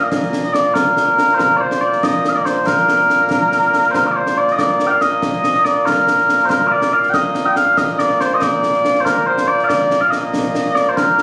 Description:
scottish traditional, Scottish pipe music; 94 BPM (dotted quarters); 6/8; straight; Bb major; A4 = 440 Hz
mellow small bagpipes; melody; 0.0-11.2 s; Bb2 to G5; -16 LUFS; equal
concert snare drum and concert bass drum; drums; 0.1-11.2 s; -25 LUFS; equal
moderate recital hall reverb, RT60 1.6 s; recorded on a phone in the room, studio reverb, compression; -15 LUFS; mono
0.0-3.9 A section; 3.9-11.2 A section

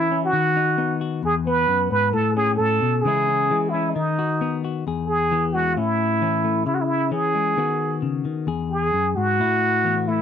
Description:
highlife; 132 BPM; 4/4; swing 55% on 16ths; E major; A4 = 440 Hz
trumpet with plunger mute; melody; 0.0-10.2 s; D#4 to B4; -21 LUFS; right 3 dB
semi-hollow electric guitar; accompaniment; 0.0-10.2 s; E2 to G#4; -23 LUFS; left 6 dB
light reverb, small room ambience; dry, close 1970s-style studio recording; -19 LUFS; side -8 dB against mid
0.0-4.9 A section; 4.9-10.2 B section
0.3 B/D#; 1.2 E; 2.1 A; 3.0 C#m; 3.9 B/D#; 4.9 E; 5.8 A; 6.7 C#m; 7.6 B/D#; 8.5 E; 9.4 A5

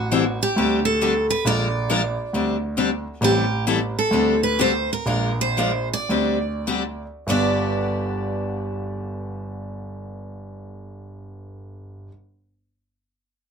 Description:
acoustic string swing (jazz manouche); 95-136 BPM; 4/4; swing 63% on 8ths; G major; A4 = 440 Hz
picked steel-string acoustic guitar; melody; 0.0-12.1 s; F#4 to D5; -24 LUFS; right 2 dB
dark grand piano; bass; 0.0-12.1 s; G1 to D2; -26 LUFS; right 1 dB
picked steel-string acoustic guitar; accompaniment; 0.1-12.1 s; G2 to Bb4; -24 LUFS; left 3 dB
light reverb; minimal, uncompressed stereo recording; -20 LUFS; side -6 dB against mid
0.0-7.3 A section; 7.3-12.3 B section
slowing down 3.2-7.3
0.0 Am7; 0.6 D7sus4; 1.4 Bb7; 2.3 D7sus4; 3.2 Am7; 4.1 D7sus4; 5.1 Bb9; 6.1 D7sus4; 7.3 G

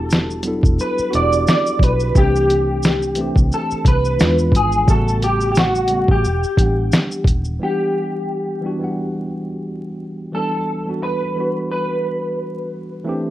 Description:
lo-fi hip hop; 88 BPM; 4/4; swing 56% on 16ths; E minor; A4 = 441 Hz
electric guitar through a small old amp; melody; 0.0-12.7 s; F#4 to D5; -20 LUFS; equal; ensemble chorus, low-pass filter
mellow tine electric piano; accompaniment; 0.0-13.3 s; C#3 to F#5; -24 LUFS; equal; medium stereo tremolo, cassette tape, low-pass filter
vintage muted fingered electric bass; bass; 0.0-7.6 s; D#1 to E2; -20 LUFS; equal
lo-fi sampler-style drum kit; drums; 0.1-7.6 s; hi-hat, kick drum, shaker, snare drum; -16 LUFS; equal
moderate studio reverb, RT60 0.7 s; rough home demo mix, vinyl crackle; -16 LUFS; side -14 dB against mid
0.0-7.6 A section; 7.6-13.3 B section
0.0 Em9; 2.2 C69; 4.2 E7b9; 4.9 A13; 6.2 Em9

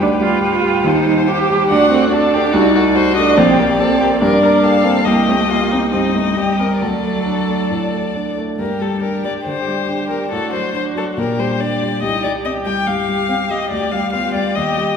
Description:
quick classical-period movement for piano quartet; 141 BPM; 4/4; straight; G minor; A4 = 443 Hz
muted violin; melody; 0.0-15.0 s; A4 to G5; -21 LUFS; left 4 dB
muted cello; second line; 0.0-15.0 s; F#3 to G4; -18 LUFS; right 3 dB
muted violin; second line; 0.0-15.0 s; Eb4 to Bb4; -23 LUFS; left 2 dB
warm baby grand piano; accompaniment; 0.0-15.0 s; Bb1 to G4; -19 LUFS; left 1 dB
wet scoring stage reverb, RT60 1.5 s; heard from further back in the room; -14 LUFS; side -6 dB against mid
0.0-8.6 A section; 8.6-15.0 A section
0.0 G7/D; 0.9 Cm/Eb; 1.7 D; 2.5 D7/C; 3.4 Gm/Bb; 4.2 Gm; 5.1 Cm7; 6.8 D; 8.6 Gm; 10.3 D/A; 11.2 Gm/Bb; 12.0 Cm; 13.7 G7/D

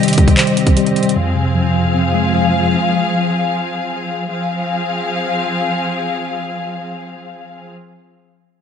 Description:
hip hop, trap; 153 BPM; 4/4; half-time; F minor; A4 = 440 Hz
mellow tine electric piano; accompaniment; 0.0-3.3 s; F2 to C5; -15 LUFS; left 1 dB; medium stereo tremolo, low-pass filter
muted symphonic string section; sustained chords; 0.0-7.7 s; C3 to F5; -19 LUFS; left 2 dB
trap drum kit; drums; 0.0-1.2 s; handclaps, hi-hat, kick drum; -14 LUFS; equal
downlifter; sound effects; 0.0-1.2 s; barely audible
moderate concert hall reverb, RT60 1.9 s; nothing above 10.7 kHz; -14 LUFS; side -7 dB against mid
0.0-4.3 A section; 4.3-7.4 B section
0.0 Cm; 1.2 Fm

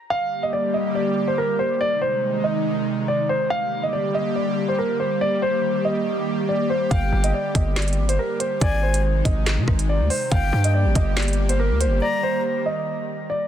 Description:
hip hop, drill; 141 BPM; 4/4; half-time; G phrygian; A4 = 441 Hz
dark concert grand piano; melody; 0.1-13.5 s; Bb4 to F5; -23 LUFS; equal
airy breathy pad; sustained chords; 0.1-13.5 s; C3 to G4; -25 LUFS; equal; chorus
breathy concert flute; second line; 6.9-12.4 s; G5 to Bb5; -31 LUFS; left 4 dB; digital delay
distorted 808-style bass; bass; 6.9-12.0 s; G1 to C3; -21 LUFS; equal; distortion
drill drum kit; drums; 6.9-11.9 s; handclaps, hi-hat, kick drum, rim click, snare drum; -23 LUFS; equal; vintage 12-bit sampler grit
little or no reverb; dense, heavily limited modern master; -19 LUFS; side -10 dB against mid
0.1-13.5 A section
break 12.0-13.5
0.1 Gm; 1.8 Ab; 3.5 Gm; 5.2 Eb; 6.9 Gm; 8.6 Ab; 10.3 Gm; 12.0 Eb

